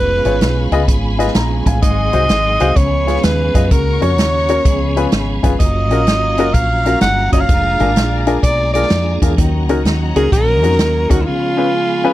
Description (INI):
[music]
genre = uptempo gospel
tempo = 127 BPM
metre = 4/4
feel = swing 66% on 8ths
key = F# major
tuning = A4 = 440 Hz
[part]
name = breathy alto saxophone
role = melody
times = 0.0-12.1 s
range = E4 to F#5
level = -17 LUFS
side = equal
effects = none
[part]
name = tonewheel organ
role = sustained chords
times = 0.0-12.1 s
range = D#3 to G#4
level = -23 LUFS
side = right 5 dB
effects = slow rotary speaker, overdrive, chorus vibrato
[part]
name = warm studio string section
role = sustained chords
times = 0.0-12.1 s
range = C#5 to C#6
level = -28 LUFS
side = left 3 dB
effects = none
[part]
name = woody fretless electric bass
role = bass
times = 0.0-11.2 s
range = E#1 to F#2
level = -17 LUFS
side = equal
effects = none
[part]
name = swinging big-band drum kit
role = drums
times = 0.2-11.2 s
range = hi-hat, kick drum, snare drum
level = -17 LUFS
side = equal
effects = none
[part]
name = warm baby grand piano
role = accompaniment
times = 0.3-12.1 s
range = G#2 to A#5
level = -19 LUFS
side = left 4 dB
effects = none
[sound]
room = little or no reverb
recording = dry, close 1970s-style studio recording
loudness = -12 LUFS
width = side -15 dB against mid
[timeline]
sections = 0.0-12.1 A section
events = break 11.3-12.1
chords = 0.0 C#7/E#; 1.8 G#7; 2.8 C#7; 3.7 F#/C#; 4.7 C#7; 5.6 F#maj7; 7.5 A#7/E#; 9.4 D#m7; 11.3 C#7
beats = 0.41 0.89 1.36 | 1.83 2.30 2.77 3.24 | 3.71 4.19 4.66 5.13 | 5.60 6.07 6.55 7.02 | 7.49 7.96 8.44 8.91 | 9.38 9.85 10.32 10.79 | 11.27 11.74